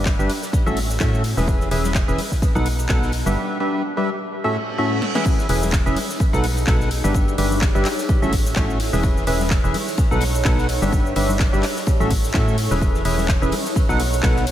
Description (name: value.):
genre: piano house.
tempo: 127 BPM.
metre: 4/4.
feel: swing 56% on 16ths.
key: E major.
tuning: A4 = 435 Hz.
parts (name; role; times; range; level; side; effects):
percussive organ stab; riff; 0.0-14.5 s; A2 to F#5; -22 LUFS; equal; analog chorus, sidechain pumping, diffuse ambient delay.
organ-like FM bass; bass; 0.0-14.5 s; E1 to A2; -23 LUFS; equal; sidechain pumping.
electronic kick drum; drums; 0.1-14.3 s; none; -20 LUFS; equal; none.
house drum kit; drums; 0.1-14.5 s; crash cymbal, handclaps, hi-hat, shaker, snare drum; -28 LUFS; left 1 dB; none.
unplugged drum kit; drums; 0.1-14.5 s; hi-hat, ride cymbal, snare drum; -37 LUFS; left 1 dB; sidechain pumping on cymbals, high-pass filter on cymbals, sidechain pumping on hats, high-pass filter on hats, high-pass filter on snare, high-pass filter on room.
tambourine and congas; percussion; 0.1-14.5 s; none; -33 LUFS; left 3 dB; none.
reverse cymbal; sound effects; 4.5-5.3 s; none; -33 LUFS; right 6 dB; none.
granular cloud pad; texture; 6.5-14.5 s; D#4 to C#5; -29 LUFS; right 1 dB; built-in reverb, lush chorus, sidechain pumping.
room: moderate church reverb, RT60 3.5 s.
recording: dreamy mix soaked in reverb.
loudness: -17 LUFS.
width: side -12 dB against mid.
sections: 0.0-5.3 A section; 5.3-14.5 B section.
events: reverse cymbal 4.5-5.3; drum fill 5.0; drop 5.3-14.5.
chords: 0.0 G6; 0.5 A6; 1.5 E6; 2.4 B7; 3.4 G6; 4.3 A6; 5.3 E6; 6.2 B7; 7.1 G6; 8.1 A6; 9.0 E6; 10.0 B7; 10.9 G6; 11.9 A6; 12.8 E6; 13.8 B7.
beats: 0.06 0.53 1.00 | 1.48 1.95 2.42 2.89 | 3.37 3.84 4.31 4.78 | 5.26 5.73 6.20 6.67 | 7.15 7.62 8.09 8.56 | 9.04 9.51 9.98 10.45 | 10.93 11.40 11.87 12.34 | 12.82 13.29 13.76 14.23.